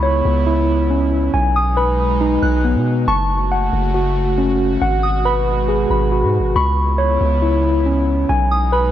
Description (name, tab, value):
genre	hip hop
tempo	138 BPM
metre	4/4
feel	half-time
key	C# minor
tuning	A4 = 438 Hz
part	soft synth bell	second line	0.0-8.9 s	B5 to F#6	-24 LUFS	right 1 dB	chorus, phaser, analog delay
part	airy breathy pad	sustained chords	0.0-8.9 s	B2 to F#4	-23 LUFS	right 2 dB	chorus
part	mellow tine electric piano	arpeggios	0.0-8.9 s	B3 to B5	-18 LUFS	left 1 dB	medium stereo tremolo, analog delay
part	long sustained 808-style bass	bass	0.0-8.9 s	F#1 to B2	-18 LUFS	equal	none
room	digital ambience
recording	dry, gritty hardware recording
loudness	-14 LUFS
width	side -11 dB against mid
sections	0.0-8.9 A section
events	none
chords	0.0 C#m7; 1.3 B6; 3.1 F#m; 4.8 G#m7; 6.6 C#m7; 8.3 B6